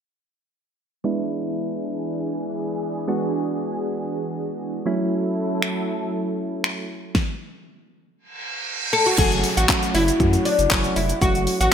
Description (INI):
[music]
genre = dance-pop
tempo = 118 BPM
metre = 4/4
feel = straight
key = F# minor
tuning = A4 = 440 Hz
[part]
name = soft electric-piano-like synth keys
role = accompaniment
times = 1.0-11.5 s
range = F#3 to F#4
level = -26 LUFS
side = right 2 dB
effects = chorus, sidechain pumping, low-pass filter
[part]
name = filtered supersaw swell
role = sustained chords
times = 1.0-11.7 s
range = E3 to F#5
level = -30 LUFS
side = equal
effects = analog chorus, sidechain pumping, low-pass filter
[part]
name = pop drum kit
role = drums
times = 5.6-11.7 s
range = crash cymbal, finger snaps, handclaps, hi-hat, kick drum, shaker, snare drum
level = -22 LUFS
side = left 1 dB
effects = none
[part]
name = reverse cymbal and downlifter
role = sound effects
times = 8.3-11.7 s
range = none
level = -27 LUFS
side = right 2 dB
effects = none
[part]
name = oud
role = melody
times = 8.9-11.7 s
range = C#4 to A4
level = -20 LUFS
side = left 2 dB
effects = digital delay
[part]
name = round analog bass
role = bass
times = 9.2-11.7 s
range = E#1 to F#2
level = -24 LUFS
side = equal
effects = sidechain pumping
[part]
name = group handclap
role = percussion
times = 9.7-10.8 s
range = none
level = barely audible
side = none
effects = none
[sound]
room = moderate plate reverb, RT60 1.7 s, digital ambience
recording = bright 1980s-style digital production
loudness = -20 LUFS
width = side -8 dB against mid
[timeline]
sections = 1.0-9.2 A section; 9.2-11.7 B section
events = filter sweep 1.0-9.2; reverse cymbal 8.3-9.2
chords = 1.0 E7; 4.9 F#m7; 9.2 F#m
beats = | 1.05 1.55 2.06 2.57 | 3.08 3.59 4.10 4.61 | 5.12 5.62 6.13 6.64 | 7.15 7.66 8.17 8.67 | 9.18 9.69 10.20 10.71 | 11.22 11.72